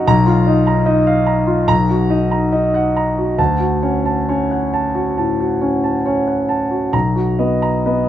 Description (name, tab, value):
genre	classical, impressionist solo piano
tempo	64-77 BPM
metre	4/4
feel	rubato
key	unclear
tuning	A4 = 440 Hz
part	warm concert grand piano	solo	0.0-8.1 s	B1 to A#5	-14 LUFS	equal	none
room	light reverb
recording	close, detailed microphones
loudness	-14 LUFS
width	side -11 dB against mid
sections	0.0-8.1 A section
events	none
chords	0.1 Bmaj7#11; 1.7 Bmaj7; 3.4 Dmaj7; 6.9 Bmaj7